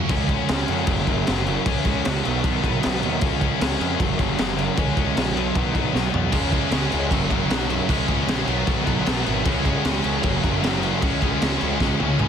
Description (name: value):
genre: punk rock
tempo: 154 BPM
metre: 4/4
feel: straight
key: Db mixolydian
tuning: A4 = 440 Hz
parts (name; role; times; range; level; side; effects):
- distorted electric guitar; riff; 0.0-12.3 s; Gb2 to Db4; -26 LUFS; left 18 dB; overdrive
- high-gain distorted guitar; riff; 0.0-0.1, 6.3-12.3 s; Gb2 to Eb4; -28 LUFS; right 1 dB; distortion
- overdriven semi-hollow guitar; riff; 0.0-12.3 s; Gb2 to Db4; -27 LUFS; right 12 dB; none
- fuzz picked electric bass; bass; 0.1-12.3 s; Gb1 to F2; -27 LUFS; equal; overdrive
- raw garage drum kit; drums; 0.1-12.3 s; crash cymbal, kick drum, snare drum, toms; -23 LUFS; equal; none
room: little or no reverb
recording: dense, heavily limited modern master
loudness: -19 LUFS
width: side -8 dB against mid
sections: 0.1-12.3 A section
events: drum fill 5.9-6.3, 11.8-12.3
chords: 0.1 Db; 0.9 Gb5; 1.7 Db5; 2.2 Cb; 3.2 Db; 4.0 Gb5; 4.8 Db5; 5.4 Cb5; 6.3 Db; 7.1 Gb; 7.9 Db; 8.5 Cb; 9.5 Db; 10.2 Gb; 11.0 Db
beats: | 0.10 0.49 0.88 1.27 | 1.66 2.05 2.44 2.83 | 3.22 3.61 4.00 4.39 | 4.78 5.17 5.56 5.95 | 6.34 6.73 7.12 7.51 | 7.90 8.29 8.68 9.07 | 9.46 9.85 10.24 10.63 | 11.02 11.41 11.80 12.19